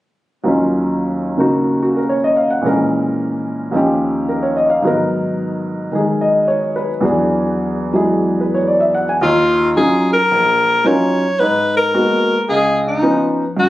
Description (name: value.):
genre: jazz.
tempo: 110 BPM.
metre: 4/4.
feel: swing 68% on 8ths.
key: Eb minor.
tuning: A4 = 440 Hz.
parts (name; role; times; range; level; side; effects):
clear concert grand piano; accompaniment; 0.4-13.7 s; Bb1 to G#5; -15 LUFS; equal; none.
clear alto saxophone; melody; 9.2-13.7 s; Eb4 to Db5; -14 LUFS; left 1 dB; none.
room: light reverb.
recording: recorded on a phone in the room, club reverb, compression.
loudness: -14 LUFS.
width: side -15 dB against mid.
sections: 0.4-9.2 A section; 9.2-13.7 B section.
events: none.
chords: 0.4 Ebm7; 2.6 Bbm7b5; 3.7 Eb7; 4.8 Abm7; 7.0 E9; 9.2 Ebm9; 11.4 Abm9; 12.5 Db9.